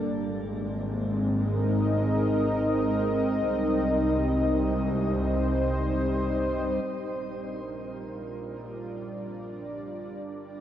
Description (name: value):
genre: ambient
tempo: 71 BPM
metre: 4/4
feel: straight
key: Bb major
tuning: A4 = 440 Hz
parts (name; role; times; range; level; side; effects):
- warm analog pad; sustained chords; 0.0-10.6 s; G3 to Eb5; -26 LUFS; equal; chorus, shimmer reverb
- bright symphonic double bass section; bass; 0.0-10.6 s; G1 to C2; -32 LUFS; equal; tube saturation
room: wet huge ambient reverb, RT60 7.7 s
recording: worn, warbling old tape, cassette tape, warbly pitch drift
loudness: -25 LUFS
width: side -10 dB against mid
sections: 0.0-6.8 A section; 6.8-10.6 B section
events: filter sweep on analog synth pad 0.0-6.8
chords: 0.1 Abadd9; 3.4 Cm; 6.8 Bb6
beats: | 0.10 0.93 1.76 2.60 | 3.44 4.28 5.13 5.99 | 6.84 7.69 8.54 9.39 | 10.23